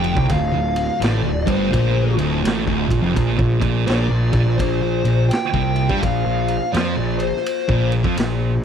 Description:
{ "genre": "stoner and doom metal", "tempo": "84 BPM", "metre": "4/4", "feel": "swing 64% on 8ths", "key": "unclear", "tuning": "A4 = 440 Hz", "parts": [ { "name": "fuzz lead guitar", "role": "melody", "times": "0.0-7.9 s", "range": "C5 to G5", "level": "-24 LUFS", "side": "left 2 dB", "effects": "distortion, slapback echo" }, { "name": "deep rumbling drone", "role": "sustained chords", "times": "0.0-8.6 s", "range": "D3 to C5", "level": "-29 LUFS", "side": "right 4 dB", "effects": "built-in reverb" }, { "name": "thick fuzz guitar", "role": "riff", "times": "0.0-8.5 s", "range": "D2 to G3", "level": "-22 LUFS", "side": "left 6 dB", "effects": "distortion" }, { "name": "thick fuzz guitar", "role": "riff", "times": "0.0-8.5 s", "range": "D2 to G3", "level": "-22 LUFS", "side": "right 8 dB", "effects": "distortion" }, { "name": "fuzz picked electric bass", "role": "bass", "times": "0.0-8.6 s", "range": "D1 to G2", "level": "-24 LUFS", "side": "equal", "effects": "overdrive" }, { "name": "raw garage drum kit", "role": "drums", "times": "0.0-8.4 s", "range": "kick drum, ride cymbal, snare drum", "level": "-25 LUFS", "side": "equal", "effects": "none" } ], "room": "small room ambience", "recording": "dry, close 1970s-style studio recording", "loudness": "-16 LUFS", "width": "side -8 dB against mid", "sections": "0.0-8.6 A section", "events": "none", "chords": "0.0 Dm; 3.2 Bb5", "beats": "| 0.30 1.01 1.73 2.44 | 3.16 3.88 4.59 5.31 | 6.03 6.74 7.46 8.17" }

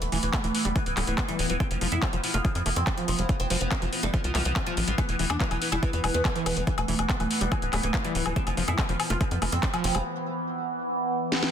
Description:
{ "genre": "psychedelic trance", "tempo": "142 BPM", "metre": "4/4", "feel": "straight", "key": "unclear", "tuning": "A4 = 442 Hz", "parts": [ { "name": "oud", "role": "melody", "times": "0.0-10.0 s", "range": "E3 to F4", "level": "-31 LUFS", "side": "right 2 dB", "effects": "phaser, sidechain pumping, tape echo" }, { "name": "overtone-sweeping drone", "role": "sustained chords", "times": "0.0-11.5 s", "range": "E3 to B3", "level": "-32 LUFS", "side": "equal", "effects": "chorus, built-in reverb, phaser, sidechain pumping" }, { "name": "tight sequencer bass", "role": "bass", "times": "0.0-10.0 s", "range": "D1 to F2", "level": "-29 LUFS", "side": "equal", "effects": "none" }, { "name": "techno drum kit", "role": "drums", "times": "0.0-11.5 s", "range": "handclaps, hi-hat, snare drum, woodblock", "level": "-30 LUFS", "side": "left 2 dB", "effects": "none" }, { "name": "overdriven acid bass", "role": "riff", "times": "0.1-10.0 s", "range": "E3 to C4", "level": "-35 LUFS", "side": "moving between left 8 dB and right 8 dB", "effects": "distortion, auto-pan, sidechain pumping, tape echo" }, { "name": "electronic kick drum", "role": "drums", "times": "0.3-9.7 s", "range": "none", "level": "-28 LUFS", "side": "equal", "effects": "none" } ], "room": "light reverb, digital ambience", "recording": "dense, heavily limited modern master", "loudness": "-24 LUFS", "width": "side -8 dB against mid", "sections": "0.0-11.5 A section", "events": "break 10.1-11.5; drum fill 11.3", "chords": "0.0 E5; 1.6 F5; 5.0 E5; 8.4 F5", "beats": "0.33 0.76 1.18 | 1.60 2.02 2.45 2.87 | 3.29 3.71 4.14 4.56 | 4.98 5.40 5.83 6.25 | 6.67 7.09 7.52 7.94 | 8.36 8.79 9.21 9.63 | 10.05 10.47 10.90 11.32" }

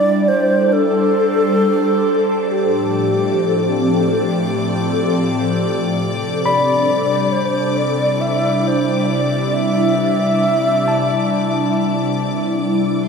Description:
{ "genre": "ambient", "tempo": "68 BPM", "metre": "4/4", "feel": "straight", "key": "unclear", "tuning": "A4 = 440 Hz", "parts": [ { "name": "wooden-headed alto flute", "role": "melody", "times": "0.0-12.2 s", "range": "G4 to E5", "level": "-19 LUFS", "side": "equal", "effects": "shimmer reverb, diffuse ambient delay" }, { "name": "airy breathy pad", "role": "sustained chords", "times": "0.0-13.1 s", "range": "A2 to D5", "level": "-17 LUFS", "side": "left 1 dB", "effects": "chorus, phaser, shimmer reverb" }, { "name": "warm chamber violin section", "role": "texture", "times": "0.0-13.1 s", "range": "D5 to D6", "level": "-27 LUFS", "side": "left 2 dB", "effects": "shimmer reverb" }, { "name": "overdriven tine electric piano", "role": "arpeggios", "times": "6.5-13.1 s", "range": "A5 to B5", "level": "-24 LUFS", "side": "left 5 dB", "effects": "shimmer reverb, diffuse ambient delay" } ], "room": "wet concert hall reverb, RT60 2.3 s", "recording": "none", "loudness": "-14 LUFS", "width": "side -5 dB against mid", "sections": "0.0-13.1 A section", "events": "fade-in on violin section 0.0-13.1", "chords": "0.0 Gsus24; 2.5 Fadd9/A; 6.0 C69", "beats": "0.72 1.60 | 2.48 3.36 4.25 5.13 | 6.01 6.89 7.77 8.66 | 9.54 10.42 11.30 12.19 | 13.07" }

